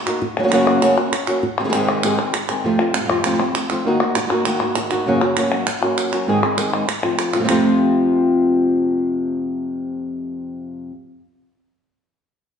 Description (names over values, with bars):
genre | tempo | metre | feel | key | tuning
flamenco | 198 BPM | 4/4 | straight | F phrygian dominant | A4 = 440 Hz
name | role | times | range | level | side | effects
flamenco guitar | melody | 0.1-10.9 s | F2 to Ab4 | -19 LUFS | equal | none
palmas hand claps | percussion | 0.1-7.6 s | none | -22 LUFS | equal | none
flamenco guitar | stabs | 2.6-10.9 s | F2 to Ab4 | -22 LUFS | equal | none
room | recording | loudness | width
wet large studio reverb, RT60 1.2 s | heard from further back in the room, nothing above 10.6 kHz | -16 LUFS | side -7 dB against mid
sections
0.0-7.5 A section; 7.5-9.9 B section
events
none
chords
0.2 Gb; 1.4 Ab; 2.6 F; 3.9 Ebm; 5.1 Gb; 6.3 Ab; 6.9 F